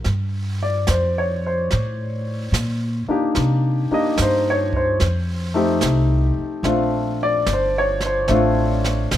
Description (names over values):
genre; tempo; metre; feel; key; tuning
jazz ballad; 73 BPM; 4/4; swing 67% on 8ths; G minor; A4 = 440 Hz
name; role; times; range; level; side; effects
warm baby grand piano; accompaniment; 0.0-9.2 s; A3 to Eb5; -20 LUFS; left 1 dB; none
jazz brush drum kit; drums; 0.0-9.2 s; brushed snare drum, hi-hat, kick drum, snare drum; -29 LUFS; right 3 dB; none
upright bass; bass; 0.1-9.2 s; G1 to C3; -21 LUFS; equal; none
room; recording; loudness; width
light reverb; none; -18 LUFS; side -12 dB against mid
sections
0.0-9.2 A section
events
none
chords
0.0 Gm9; 3.4 Cm7; 5.0 F9; 6.6 Bbmaj9